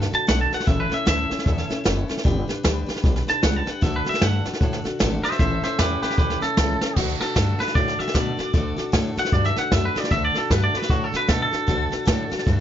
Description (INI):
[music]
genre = rockabilly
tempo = 153 BPM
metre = 4/4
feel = swing 61% on 8ths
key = D major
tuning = A4 = 443 Hz
[part]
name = picked steel-string acoustic guitar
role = accompaniment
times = 0.0-12.6 s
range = A2 to B4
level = -28 LUFS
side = left 3 dB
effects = none
[part]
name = upright bass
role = bass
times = 0.0-12.6 s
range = F#1 to B2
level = -25 LUFS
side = equal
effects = none
[part]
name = jazz brush drum kit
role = drums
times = 0.0-12.6 s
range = crash cymbal, hi-hat, kick drum, snare drum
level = -23 LUFS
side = equal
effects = none
[part]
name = twangy electric guitar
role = melody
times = 0.1-12.6 s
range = F#4 to A5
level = -25 LUFS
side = right 1 dB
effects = tape echo
[sound]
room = little or no reverb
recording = nothing above 7.5 kHz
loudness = -19 LUFS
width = side -10 dB against mid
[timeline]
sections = 0.0-7.0 A section; 7.0-12.6 B section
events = drum fill 6.8; clean electric guitar solo 7.0-12.6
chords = 0.0 D; 0.7 A; 2.2 G; 3.8 D; 5.4 A; 7.0 D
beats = 0.28 | 0.68 1.07 1.46 1.86 | 2.25 2.64 3.04 3.43 | 3.82 4.22 4.61 5.00 | 5.40 5.79 6.18 6.58 | 6.97 7.36 7.75 8.15 | 8.54 8.93 9.32 9.72 | 10.11 10.50 10.90 11.29 | 11.68 12.07 12.47